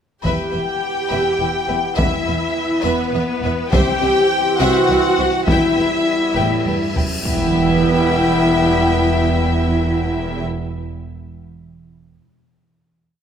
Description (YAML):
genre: cinematic, epic orchestral film score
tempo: 69 BPM (dotted quarters)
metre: 6/8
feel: straight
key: E minor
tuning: A4 = 440 Hz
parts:
  - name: warm studio violin section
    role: melody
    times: 0.2-10.4 s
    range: B4 to G5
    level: -22 LUFS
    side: left 4 dB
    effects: none
  - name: warm symphonic violin section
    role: second line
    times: 0.2-10.4 s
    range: B4 to G5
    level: -25 LUFS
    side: left 2 dB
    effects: none
  - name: warm symphonic viola section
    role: accompaniment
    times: 0.2-10.4 s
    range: B3 to G4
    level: -23 LUFS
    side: equal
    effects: none
  - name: mellow French horn section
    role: sustained chords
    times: 0.2-10.4 s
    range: B3 to G4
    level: -23 LUFS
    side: left 3 dB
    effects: none
  - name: dark symphonic cello section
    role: bass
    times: 0.2-10.4 s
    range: C2 to A2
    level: -24 LUFS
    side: right 2 dB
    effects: none
  - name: rich symphonic double bass section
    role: bass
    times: 0.2-10.4 s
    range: E1 to C2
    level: -23 LUFS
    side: right 3 dB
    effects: none
  - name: solo taiko drums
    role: drums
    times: 0.2-7.2 s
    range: none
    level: -21 LUFS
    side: equal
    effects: none
  - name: clear trombone section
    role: sustained chords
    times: 0.3-10.4 s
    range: E3 to C4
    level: -26 LUFS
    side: right 3 dB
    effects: none
  - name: cymbal swell and impact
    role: sound effects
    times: 6.6-9.0 s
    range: none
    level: -28 LUFS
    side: equal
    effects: none
room: moderate concert hall reverb, RT60 2.3 s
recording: none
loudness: -15 LUFS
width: side -8 dB against mid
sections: 0.2-7.2 theme; 7.2-10.7 final chord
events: cymbal swell 6.6-7.2; impact 7.2-9.0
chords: 0.2 Em; 3.7 C; 5.5 Em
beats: | 0.25 1.12 | 1.99 2.85 | 3.73 4.60 | 5.48 6.37 | 7.25 8.12 | 8.99 9.86